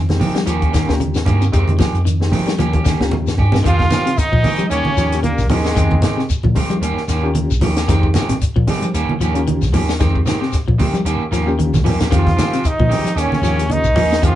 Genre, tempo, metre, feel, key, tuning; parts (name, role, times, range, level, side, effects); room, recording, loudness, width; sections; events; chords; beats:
afrobeat; 114 BPM; 4/4; swing 55% on 16ths; F minor; A4 = 444 Hz
electric guitar at the edge of break-up; arpeggios; 0.0-14.4 s; C3 to G3; -24 LUFS; left 3 dB
hollow-body short-scale fingered electric bass; bass; 0.0-14.4 s; Bb1 to F3; -19 LUFS; equal
barky reed electric piano; accompaniment; 0.1-14.4 s; Ab3 to G5; -25 LUFS; left 2 dB; overdrive, fast tremolo
compact cocktail drum kit; drums; 0.1-14.4 s; hi-hat, kick drum, snare drum, toms; -20 LUFS; left 1 dB
congas; percussion; 0.1-14.1 s; -21 LUFS; right 2 dB
electric guitar at the edge of break-up; stabs; 0.2-14.4 s; Eb3 to G4; -23 LUFS; right 3 dB
shekere; percussion; 0.2-14.4 s; -26 LUFS; left 2 dB
brilliant trombone; melody; 3.7-6.3, 12.2-14.4 s; Ab3 to F4; -21 LUFS; right 1 dB
clear alto saxophone; second line; 3.7-6.3, 12.1-14.4 s; Ab4 to F5; -25 LUFS; right 3 dB
clear trombone section; second line; 3.7-6.2, 12.1-14.4 s; Ab2 to F3; -30 LUFS; left 2 dB
wet small room reverb, RT60 0.5 s; band playing live in one room, nothing above 10.9 kHz; -14 LUFS; side -12 dB against mid
0.0-3.7 A section; 3.7-14.4 B section
drum fill 2.6-3.7, 11.7-12.1
0.5 Eb7; 1.5 Fm9; 2.6 Eb7; 3.7 Fm9; 4.7 Eb7; 5.8 Fm9; 6.8 Eb7; 7.9 Fm9; 8.9 Eb7; 10.0 Fm9; 11.1 Eb7; 12.1 Fm9; 13.2 Eb7
0.48 1.01 | 1.54 2.07 2.60 3.12 | 3.65 4.18 4.71 5.24 | 5.77 6.30 6.83 7.35 | 7.88 8.41 8.94 9.47 | 10.00 10.53 11.05 11.58 | 12.11 12.64 13.17 13.70 | 14.22